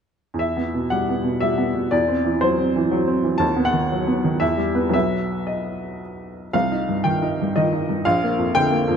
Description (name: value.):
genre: classical, romantic character piece for solo piano.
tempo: 112-123 BPM.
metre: 3/4.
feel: rubato.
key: E minor.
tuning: A4 = 440 Hz.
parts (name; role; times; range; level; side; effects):
clear upright piano; solo; 0.3-9.0 s; Bb1 to A5; -19 LUFS; equal; none.
room: moderate scoring stage reverb, RT60 1.5 s.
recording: close, detailed microphones.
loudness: -18 LUFS.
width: side -7 dB against mid.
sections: 0.4-9.0 A section.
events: none.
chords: 0.4 Em; 1.9 D9/E; 3.4 B/D#; 4.4 Em; 4.9 B; 6.5 Cm; 8.0 Bb.